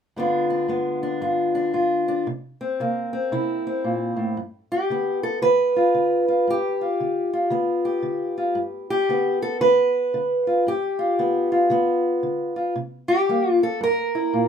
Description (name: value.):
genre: acoustic country blues, solo or duo.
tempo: 114 BPM.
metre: 4/4.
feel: swing 63% on 8ths.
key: G mixolydian.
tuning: A4 = 440 Hz.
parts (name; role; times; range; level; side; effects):
fingerpicked steel-string acoustic guitar; solo; 0.2-14.5 s; G2 to B4; -20 LUFS; equal; none.
room: moderate studio reverb, RT60 0.6 s.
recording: minimal, uncompressed stereo recording.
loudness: -20 LUFS.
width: side -7 dB against mid.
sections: 0.2-4.4 A section; 4.4-14.5 B section.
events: none.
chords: 0.2 G7; 2.3 C7; 4.4 G7; 12.8 C7.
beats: | 0.16 0.69 1.22 1.74 | 2.27 2.79 3.32 3.84 | 4.37 4.89 5.42 5.94 | 6.47 6.99 7.51 8.04 | 8.56 9.09 9.61 10.14 | 10.66 11.18 11.71 12.23 | 12.76 13.28 13.81 14.33.